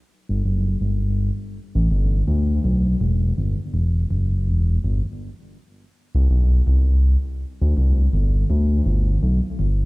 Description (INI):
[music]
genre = reggae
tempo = 82 BPM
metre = 4/4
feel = swing 57% on 16ths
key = G major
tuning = A4 = 444 Hz
[part]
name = smooth synth bass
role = solo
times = 0.3-9.9 s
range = E1 to D2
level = -18 LUFS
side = equal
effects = analog delay
[sound]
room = moderate studio reverb, RT60 0.6 s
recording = dark, warm production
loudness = -18 LUFS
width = side -23 dB against mid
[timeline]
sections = 0.0-9.9 A section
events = none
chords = none